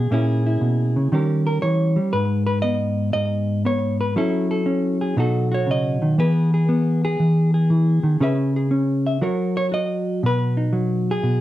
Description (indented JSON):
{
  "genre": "solo jazz",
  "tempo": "118 BPM",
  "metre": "4/4",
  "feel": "swing 68% on 8ths",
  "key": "unclear",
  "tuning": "A4 = 436 Hz",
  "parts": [
    { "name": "hollow-body jazz guitar", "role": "solo", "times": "0.0-11.4 s", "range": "G#2 to E5", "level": "-18 LUFS", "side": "equal", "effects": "slapback echo" }
  ],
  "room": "light reverb",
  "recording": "dry, close 1970s-style studio recording",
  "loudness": "-18 LUFS",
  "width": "side -14 dB against mid",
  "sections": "0.0-6.2 A section; 6.2-11.4 B section",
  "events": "none",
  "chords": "0.1 A#m7b5; 1.1 D#7; 2.1 G#m; 4.2 F#m7; 5.2 B7; 6.2 E; 8.2 C#m7; 9.2 F#; 10.2 B6"
}